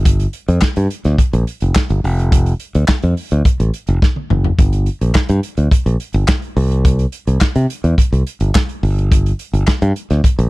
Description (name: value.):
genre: disco.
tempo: 106 BPM.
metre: 4/4.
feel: straight.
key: G dorian.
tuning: A4 = 440 Hz.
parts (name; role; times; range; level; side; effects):
modern bright fingered electric bass; bass; 0.0-10.5 s; F1 to C3; -14 LUFS; equal; none.
warm soul drum kit; drums; 0.1-10.5 s; handclaps, hi-hat, kick drum, snare drum, toms; -15 LUFS; equal; none.
room: little or no reverb.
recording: none.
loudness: -13 LUFS.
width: side -21 dB against mid.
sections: 0.0-10.5 A section.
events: drum fill 4.0-4.6.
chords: none.